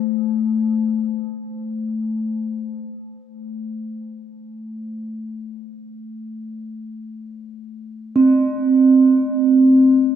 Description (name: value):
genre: world meditative, free-time meditation music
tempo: free time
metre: none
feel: none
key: A hirajoshi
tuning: A4 = 441 Hz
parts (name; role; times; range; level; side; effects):
- quartz singing bowl; solo; 0.0-0.5, 8.2-10.2 s; A3 to C4; -18 LUFS; right 1 dB; none
room: wet huge ambient reverb, RT60 8.1 s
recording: dreamy mix soaked in reverb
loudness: -15 LUFS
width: side -9 dB against mid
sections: 0.0-10.2 A section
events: none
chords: none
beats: free time